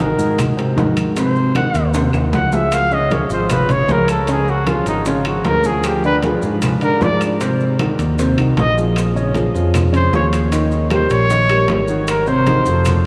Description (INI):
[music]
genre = Afro-Cuban jazz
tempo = 154 BPM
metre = 4/4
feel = straight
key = Ab mixolydian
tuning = A4 = 440 Hz
[part]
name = warm trumpet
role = melody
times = 0.0-12.9 s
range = Eb4 to Gb5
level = -22 LUFS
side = equal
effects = none
[part]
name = warm grand piano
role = accompaniment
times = 0.0-13.0 s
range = C3 to Eb5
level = -21 LUFS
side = equal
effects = none
[part]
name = fingered electric bass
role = bass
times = 0.0-13.1 s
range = F1 to Ab2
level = -22 LUFS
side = equal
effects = none
[part]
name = bongos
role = percussion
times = 0.0-13.1 s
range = none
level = -32 LUFS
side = equal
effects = none
[part]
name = congas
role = percussion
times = 0.0-13.1 s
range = none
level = -27 LUFS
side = equal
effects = none
[part]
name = timbales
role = percussion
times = 0.0-13.1 s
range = none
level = -30 LUFS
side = equal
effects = none
[part]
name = maracas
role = percussion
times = 0.2-13.1 s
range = none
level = -40 LUFS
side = equal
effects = none
[part]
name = claves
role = percussion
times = 0.4-13.1 s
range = none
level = -38 LUFS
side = equal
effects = none
[sound]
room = wet cathedral reverb, RT60 5.5 s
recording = in a vast, echoing space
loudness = -16 LUFS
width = mono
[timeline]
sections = 0.0-13.1 A section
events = trumpet solo 0.0-13.1; drum fill 1.9-2.7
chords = 0.0 Ab7; 2.7 Db; 5.8 Ddim; 7.4 Ab9; 9.0 Bbm7; 10.5 Eb7; 12.1 Ab7